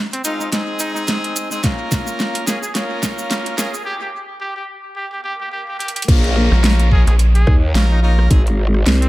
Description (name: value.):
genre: glitch hop.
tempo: 108 BPM.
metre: 4/4.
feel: swing 57% on 16ths.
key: Bb dorian.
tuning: A4 = 440 Hz.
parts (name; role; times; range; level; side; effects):
clear trumpet; melody; 0.1-9.1 s; C4 to Ab4; -27 LUFS; equal; analog delay.
dubstep drum kit; drums; 0.1-9.1 s; crash cymbal, hi-hat, rim click, snare drum; -22 LUFS; right 1 dB; small room ambience, analog delay.
brilliant horn section; stabs; 0.2-8.4 s; Ab3 to Bb4; -24 LUFS; left 1 dB; sidechain pumping, analog delay.
cabasa; percussion; 0.2-3.8 s; none; -27 LUFS; right 2 dB; none.
electronic kick drum; drums; 1.6-8.4 s; none; -14 LUFS; equal; small room ambience.
swell and downlifter; sound effects; 5.3-9.1 s; none; -29 LUFS; left 2 dB; none.
growl bass; bass; 6.1-9.1 s; Ab1 to Eb2; -15 LUFS; equal; chorus.
rubbery square bass; bass; 6.5-8.3 s; Bb1; -12 LUFS; equal; none.
room: light reverb.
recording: echo-heavy mix, high-pass filter.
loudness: -15 LUFS.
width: side -18 dB against mid.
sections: 0.0-6.1 A section; 6.1-9.1 B section.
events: build-up 0.0-6.1; drum fill 0.0-3.9, 5.8; break 3.9-6.1; swell 5.3-6.1; drop 6.1-9.1.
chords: 0.0 Ab; 1.6 Bbm; 3.9 N.C.; 6.1 Bbm; 8.3 Ab.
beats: 0.53 1.08 | 1.64 2.20 2.75 3.31 | 3.86 4.42 4.97 5.53 | 6.08 6.64 7.20 7.75 | 8.31 8.86.